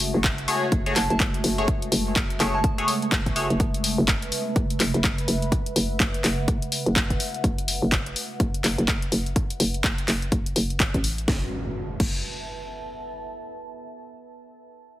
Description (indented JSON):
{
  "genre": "bass house",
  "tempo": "125 BPM",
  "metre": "4/4",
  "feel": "swing 60% on 16ths",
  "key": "F# minor",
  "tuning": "A4 = 436 Hz",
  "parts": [
    { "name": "sweeping resonant pad", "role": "sustained chords", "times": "0.0-11.5 s", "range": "A2 to B4", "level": "-32 LUFS", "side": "right 2 dB", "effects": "chorus, sidechain pumping" },
    { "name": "hollow knocking FM bass", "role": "bass", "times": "0.0-12.2 s", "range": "F#1 to A1", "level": "-26 LUFS", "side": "equal", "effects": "tube saturation, sidechain pumping" },
    { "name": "house drum kit", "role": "drums", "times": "0.0-12.1 s", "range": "crash cymbal, handclaps, hi-hat, snare drum", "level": "-26 LUFS", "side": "left 1 dB", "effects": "none" },
    { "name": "deep dark ambient pad", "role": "texture", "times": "0.0-13.2 s", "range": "B4 to A5", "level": "-37 LUFS", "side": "equal", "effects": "chorus, built-in reverb, sidechain pumping" },
    { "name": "electronic kick drum", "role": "drums", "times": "0.2-12.1 s", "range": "none", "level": "-24 LUFS", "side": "equal", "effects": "none" },
    { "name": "band-passed chord stab", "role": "stabs", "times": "0.5-3.5 s", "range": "A3 to C#5", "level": "-27 LUFS", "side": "left 2 dB", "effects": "phaser, sidechain pumping, dub echo" },
    { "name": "soft synth bell", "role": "melody", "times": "1.0-2.6 s", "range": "A5", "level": "-32 LUFS", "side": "right 2 dB", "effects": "chorus, dub echo" },
    { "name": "impact", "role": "sound effects", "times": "11.3-13.2 s", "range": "none", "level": "-36 LUFS", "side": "equal", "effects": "none" }
  ],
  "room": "light reverb",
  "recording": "heavily compressed radio sound",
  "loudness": "-21 LUFS",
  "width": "side -15 dB against mid",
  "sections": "0.0-11.3 A section; 11.3-13.2 B section",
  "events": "fade-out on ambient pad 0.0-11.3; filter sweep on FM bass 0.0-11.3",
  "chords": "0.0 F#madd9; 11.3 F#m",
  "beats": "0.24 0.72 1.20 | 1.68 2.16 2.64 3.12 | 3.60 4.08 4.56 5.04 | 5.52 6.00 6.48 6.96 | 7.44 7.92 8.40 8.88 | 9.36 9.84 10.32 10.80 | 11.28 11.76 12.24 12.72"
}